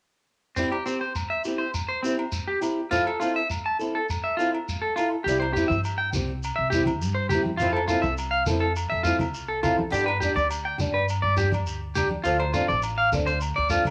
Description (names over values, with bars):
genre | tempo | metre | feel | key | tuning
highlife guitar band | 103 BPM | 4/4 | straight | C major | A4 = 439 Hz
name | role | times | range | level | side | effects
picked old ladder-braced acoustic guitar | accompaniment | 0.6-13.9 s | F3 to A4 | -30 LUFS | equal | cassette tape
electric guitar at the edge of break-up | arpeggios | 0.6-13.8 s | C4 to A5 | -28 LUFS | equal | warbly pitch drift, cassette tape
shekere | percussion | 0.6-13.9 s | none | -35 LUFS | equal | none
agogo bells | percussion | 0.7-13.9 s | none | -39 LUFS | equal | none
upright bass | bass | 5.3-13.9 s | A1 to G2 | -32 LUFS | equal | none
congas | percussion | 5.7-13.9 s | none | -36 LUFS | equal | none
room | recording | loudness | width
moderate small room reverb, RT60 0.5 s | home recording on cassette | -25 LUFS | mono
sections
0.6-5.3 A section; 5.3-13.9 B section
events
none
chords
0.6 C; 2.9 Fmaj7; 5.3 C; 7.6 Fmaj7; 9.9 G; 12.2 Dm7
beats
| 0.57 1.15 1.74 2.33 | 2.91 3.50 4.08 4.67 | 5.25 5.84 6.42 7.00 | 7.58 8.17 8.75 9.33 | 9.92 10.50 11.08 11.66 | 12.25 12.83 13.42